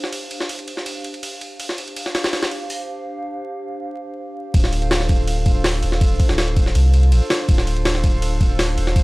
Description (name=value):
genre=drum and bass, jungle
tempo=163 BPM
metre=4/4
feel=straight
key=D minor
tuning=A4 = 441 Hz
part: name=warbly tape-like pad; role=sustained chords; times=0.0-9.0 s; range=D4 to F5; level=-28 LUFS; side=right 1 dB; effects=chorus, built-in reverb
part: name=jungle sampler-style drum kit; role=drums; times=0.0-9.0 s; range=hi-hat, kick drum, ride cymbal, snare drum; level=-19 LUFS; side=equal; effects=overdrive, high-pass filter on cymbals, studio reverb, high-pass filter on snare, high-pass filter on hats, high-pass filter on kick
part: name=saturated sub bass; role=bass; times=4.5-9.0 s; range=D1 to C2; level=-18 LUFS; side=equal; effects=tube saturation
room=digital ambience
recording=dry, gritty hardware recording, vinyl crackle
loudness=-17 LUFS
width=side -23 dB against mid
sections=0.0-4.5 A section; 4.5-9.0 B section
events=break 3.1-4.5; drop 4.5-9.0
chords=0.0 Fsus2/D; 4.5 Dm7